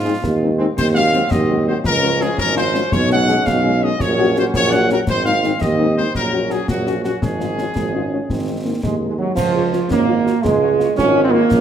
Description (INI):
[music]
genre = military-style march for wind band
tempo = 112 BPM (dotted quarters)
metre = 6/8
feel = straight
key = Db major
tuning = A4 = 443 Hz
[part]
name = dark trumpet section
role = melody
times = 0.0-11.4 s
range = F4 to Gb5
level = -20 LUFS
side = left 1 dB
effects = none
[part]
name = clear trombone section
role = sustained chords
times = 0.0-11.6 s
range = Eb3 to Db4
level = -21 LUFS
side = right 3 dB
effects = none
[part]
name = warm tuba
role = bass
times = 0.0-11.6 s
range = Ab1 to Ab2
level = -20 LUFS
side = right 2 dB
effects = none
[part]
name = mellow French horn section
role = accompaniment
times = 0.1-11.4 s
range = Gb3 to Ab4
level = -24 LUFS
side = left 7 dB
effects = none
[part]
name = concert snare drum, concert bass drum and clash cymbals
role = drums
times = 0.2-11.6 s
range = none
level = -25 LUFS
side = left 2 dB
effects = none
[part]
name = dark euphonium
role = second line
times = 7.8-11.6 s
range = Gb3 to Ab4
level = -23 LUFS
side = right 5 dB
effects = none
[sound]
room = wet large studio reverb, RT60 1.3 s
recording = none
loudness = -15 LUFS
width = side -9 dB against mid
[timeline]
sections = 0.0-9.4 A section; 9.4-11.6 B section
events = none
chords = 0.0 Ab; 0.8 Ab7/Eb; 1.9 Db; 2.9 Db7/Cb; 4.0 Gb/Bb; 5.1 Ab; 6.1 Gb/Bb; 7.2 Db/Ab; 8.3 Ab; 9.4 Db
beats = 0.24 | 0.78 1.31 | 1.85 2.39 | 2.92 3.46 | 4.00 4.54 | 5.07 5.61 | 6.15 6.68 | 7.22 7.76 | 8.29 8.83 | 9.37 9.90 | 10.44 10.98 | 11.52